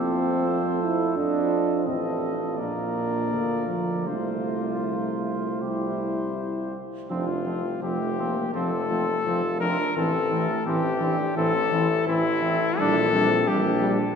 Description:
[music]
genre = classical, brass quintet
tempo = 77-87 BPM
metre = 4/4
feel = rubato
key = F major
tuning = A4 = 440 Hz
[part]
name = warm cornet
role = melody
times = 0.0-13.9 s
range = E4 to Eb5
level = -28 LUFS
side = left 6 dB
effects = none
[part]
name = mellow trumpet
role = second line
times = 0.0-14.0 s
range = C4 to Bb4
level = -33 LUFS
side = right 4 dB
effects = none
[part]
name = dark trombone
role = accompaniment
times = 0.0-13.9 s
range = F3 to F4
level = -29 LUFS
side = right 2 dB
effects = none
[part]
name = warm French horn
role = accompaniment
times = 0.0-14.0 s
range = E3 to F4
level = -31 LUFS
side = left 2 dB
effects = none
[part]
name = clear tuba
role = bass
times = 0.0-14.0 s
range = F1 to F2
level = -29 LUFS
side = right 2 dB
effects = none
[sound]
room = wet cathedral reverb, RT60 6.9 s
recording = heard from further back in the room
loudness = -22 LUFS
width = side -6 dB against mid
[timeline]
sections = 0.0-7.1 A section; 7.1-14.2 B section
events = none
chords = 0.0 F; 1.2 F7; 2.6 Bb; 4.1 F/C; 5.6 C; 7.1 F; 10.0 Am; 12.8 Gm/Bb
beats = 0.47 | 1.18 1.88 2.59 3.32 | 4.08 4.86 5.62 6.37 | 7.11 7.83 8.54 9.25 | 9.96 10.66 11.37 12.07 | 12.79 13.48

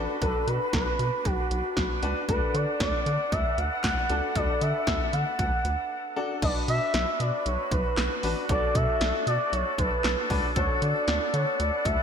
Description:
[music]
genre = synth-pop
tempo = 116 BPM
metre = 4/4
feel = straight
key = unclear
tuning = A4 = 440 Hz
[part]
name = bright grand piano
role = accompaniment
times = 0.0-11.3 s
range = D4 to B4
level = -34 LUFS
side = left 3 dB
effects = lush chorus, shimmer reverb
[part]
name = breathy bright flute section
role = sustained chords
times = 0.0-12.0 s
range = D4 to F#5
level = -32 LUFS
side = equal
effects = shimmer reverb
[part]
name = rubbery square bass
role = bass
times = 0.0-12.0 s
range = A1 to D3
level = -30 LUFS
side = equal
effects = none
[part]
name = expressive portamento lead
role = melody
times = 0.2-12.0 s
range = F#4 to F#5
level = -29 LUFS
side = equal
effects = chorus, shimmer reverb, ping-pong delay
[part]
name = punchy analog drum machine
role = drums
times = 0.2-12.0 s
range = crash cymbal, handclaps, hi-hat, kick drum, snare drum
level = -30 LUFS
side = equal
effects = gated reverb
[sound]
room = moderate lush hall reverb, RT60 2.6 s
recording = bright 1980s-style digital production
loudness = -24 LUFS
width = side -7 dB against mid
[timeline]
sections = 0.0-6.4 A section; 6.4-12.0 B section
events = break 5.9-6.4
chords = 0.0 Bm; 2.3 D6; 6.4 Bm; 10.6 D6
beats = | 0.22 0.73 1.25 1.77 | 2.29 2.80 3.32 3.84 | 4.35 4.87 5.39 5.91 | 6.42 6.94 7.46 7.97 | 8.49 9.01 9.53 10.04 | 10.56 11.08 11.60

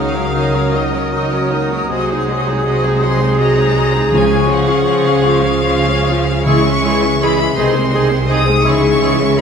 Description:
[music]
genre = classical, slow romantic movement for symphony orchestra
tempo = 47-56 BPM (dotted quarters)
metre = 6/8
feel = rubato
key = Db major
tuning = A4 = 440 Hz
[part]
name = rich chamber violin section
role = melody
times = 0.0-9.4 s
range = Eb5 to D#6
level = -21 LUFS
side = left 3 dB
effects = none
[part]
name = bright small flute group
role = second line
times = 0.0-9.4 s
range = Db6 to E6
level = -24 LUFS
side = left 4 dB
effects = none
[part]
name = rich chamber violin section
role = second line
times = 0.0-9.4 s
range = E4 to F5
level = -24 LUFS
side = left 1 dB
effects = none
[part]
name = warm cor anglais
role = second line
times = 0.0-9.2 s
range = G#4 to Bb4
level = -24 LUFS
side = right 2 dB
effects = none
[part]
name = mellow bassoon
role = accompaniment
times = 0.0-9.4 s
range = F3 to G#3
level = -24 LUFS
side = right 3 dB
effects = none
[part]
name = rich chamber viola section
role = accompaniment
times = 0.0-9.4 s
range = Eb3 to Gb4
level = -22 LUFS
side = right 1 dB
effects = none
[part]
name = dark French horn section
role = sustained chords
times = 0.0-9.4 s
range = D#3 to Bb4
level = -21 LUFS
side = left 2 dB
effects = none
[part]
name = concert harp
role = arpeggios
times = 0.0-9.4 s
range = C3 to Db5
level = -20 LUFS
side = left 5 dB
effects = none
[part]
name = rich chamber cello section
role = bass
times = 0.0-9.4 s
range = C3 to Db3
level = -21 LUFS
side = right 4 dB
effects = none
[part]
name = warm chamber double bass section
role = bass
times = 0.0-9.4 s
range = C2 to Db2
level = -20 LUFS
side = right 2 dB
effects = none
[part]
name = timpani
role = percussion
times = 4.1-7.5 s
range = Db3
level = -22 LUFS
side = equal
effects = none
[sound]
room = wet scoring stage reverb, RT60 1.9 s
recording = minimal, uncompressed stereo recording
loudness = -12 LUFS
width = side -6 dB against mid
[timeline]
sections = 0.0-9.4 A section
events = none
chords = 0.0 Ebm7/Db; 1.9 Ab7/C; 4.1 Db; 6.5 C#m; 7.6 G#/B#; 8.7 C#m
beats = 0.73 | 1.89 3.03 | 4.13 5.24 | 6.47 7.58 | 8.66

